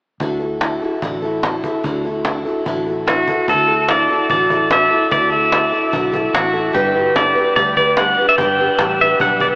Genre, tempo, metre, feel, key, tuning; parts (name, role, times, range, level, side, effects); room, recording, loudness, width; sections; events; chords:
honky-tonk and classic country; 147 BPM; 4/4; straight; D major; A4 = 435 Hz
picked steel-string acoustic guitar; accompaniment; 0.2-9.6 s; D3 to B4; -19 LUFS; equal
vintage muted fingered electric bass; bass; 0.2-9.6 s; G1 to D2; -31 LUFS; equal
cajon; drums; 0.2-9.5 s; -23 LUFS; equal
pedal steel guitar; melody; 3.1-9.5 s; F#4 to G5; -14 LUFS; equal; diffuse ambient delay
wet huge ambient reverb, RT60 7.6 s; dreamy mix soaked in reverb, AM radio sound; -13 LUFS; side -28 dB against mid
0.2-3.5 A section; 3.5-9.6 B section
0.2 Dadd9; 6.8 G